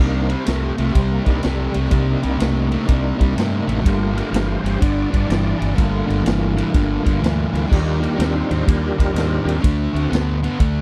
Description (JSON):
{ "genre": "blues rock power trio and southern rock", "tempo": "124 BPM", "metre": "4/4", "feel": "swing 65% on 8ths", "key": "G minor", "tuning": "A4 = 440 Hz", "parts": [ { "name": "overdriven tonewheel organ", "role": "sustained chords", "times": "0.0-10.2 s", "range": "G3 to F5", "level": "-28 LUFS", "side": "equal", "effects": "chorus vibrato, fast rotary speaker" }, { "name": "fuzz guitar", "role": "riff", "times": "0.0-10.8 s", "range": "G2 to C4", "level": "-24 LUFS", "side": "equal", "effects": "distortion" }, { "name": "growling fingered electric bass", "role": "bass", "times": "0.0-10.8 s", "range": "G1 to G2", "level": "-24 LUFS", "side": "equal", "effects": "overdrive" }, { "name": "vintage drum kit", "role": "drums", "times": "0.3-10.7 s", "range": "crash cymbal, kick drum, ride cymbal, snare drum", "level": "-21 LUFS", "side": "equal", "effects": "none" } ], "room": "small room ambience", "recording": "dry, close 1970s-style studio recording", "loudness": "-19 LUFS", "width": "mono", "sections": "0.0-10.8 A section", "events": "tonewheel organ solo 0.0-10.8", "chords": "0.0 Cm7; 3.8 Gm7; 7.7 Ebmaj7; 9.6 D7", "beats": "0.47 0.95 1.43 | 1.92 2.40 2.88 3.36 | 3.85 4.33 4.81 5.29 | 5.78 6.26 6.74 7.22 | 7.70 8.19 8.67 9.15 | 9.63 10.11 10.59" }